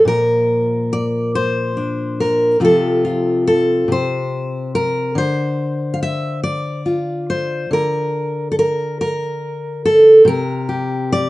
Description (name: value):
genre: folk, solo fingerstyle acoustic guitar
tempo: 47 BPM (dotted quarters)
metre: 6/8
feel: straight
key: unclear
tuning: A4 = 440 Hz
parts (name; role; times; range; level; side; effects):
- fingerpicked steel-string acoustic guitar; solo; 0.0-11.3 s; Bb2 to F5; -14 LUFS; equal; none
room: light reverb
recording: rough home demo mix, nothing above 10.4 kHz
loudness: -15 LUFS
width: side -18 dB against mid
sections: 0.0-11.3 A section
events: none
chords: 0.1 Bb; 2.6 F/C; 3.9 N.C.; 5.2 Dm7; 7.7 N.C.; 10.3 C5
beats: | 0.05 1.33 | 2.61 3.88 | 5.16 6.44 | 7.71 8.99 | 10.26